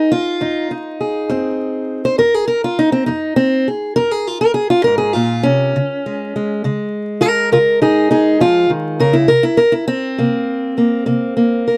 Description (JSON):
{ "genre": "acoustic country blues, solo or duo", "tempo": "68 BPM (dotted quarters)", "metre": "12/8", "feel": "straight", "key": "F minor", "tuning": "A4 = 441 Hz", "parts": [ { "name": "fingerpicked steel-string acoustic guitar", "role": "solo", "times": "0.0-11.8 s", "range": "F2 to C5", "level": "-16 LUFS", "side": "equal", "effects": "none" } ], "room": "light reverb", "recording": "dry, close 1970s-style studio recording, vinyl crackle", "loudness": "-16 LUFS", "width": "mono", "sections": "0.0-11.8 A section", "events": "steel-string acoustic guitar solo 0.0-11.8", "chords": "0.0 Fm7; 5.7 Db; 9.3 C7" }